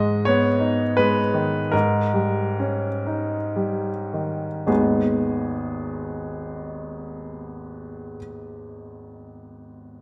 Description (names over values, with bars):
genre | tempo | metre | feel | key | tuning
classical, romantic character piece for solo piano | 50-92 BPM | 3/4 | rubato | G# minor | A4 = 439 Hz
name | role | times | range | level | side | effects
clear baby grand piano | solo | 0.0-10.0 s | G#1 to D#5 | -24 LUFS | equal | none
room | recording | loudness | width
wet recital hall reverb, RT60 1.6 s | none | -23 LUFS | mono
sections
0.0-4.7 A section; 4.7-10.0 B section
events
slowing down 0.0-4.7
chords
0.0 G#m; 1.7 D#7/G#; 4.7 G#m